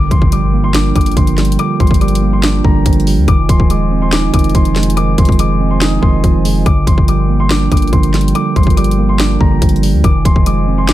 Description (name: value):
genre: hip hop, trap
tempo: 142 BPM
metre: 4/4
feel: half-time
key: G phrygian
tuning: A4 = 441 Hz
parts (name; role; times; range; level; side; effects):
- dark baby grand piano; melody; 0.0-10.9 s; Bb5 to Eb6; -21 LUFS; left 4 dB; low-pass filter, digital delay
- mellow tine electric piano; accompaniment; 0.0-10.9 s; D3 to Eb4; -15 LUFS; right 6 dB; low-pass filter
- glass harmonica; sustained chords; 0.0-10.9 s; G3 to Ab5; -25 LUFS; left 2 dB; none
- long sustained 808-style bass; bass; 0.0-10.9 s; Eb1 to D2; -15 LUFS; left 1 dB; none
- impact; sound effects; 0.0-1.6 s; none; -24 LUFS; left 1 dB; none
- trap drum kit; drums; 0.1-10.9 s; hi-hat, kick drum, snare drum; -13 LUFS; left 1 dB; none
room: digital ambience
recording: none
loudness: -10 LUFS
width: side -14 dB against mid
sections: 0.0-10.9 A section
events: impact 0.0-1.6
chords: 0.0 Gm7; 3.3 Fm7; 6.7 Gm7; 10.0 Fm7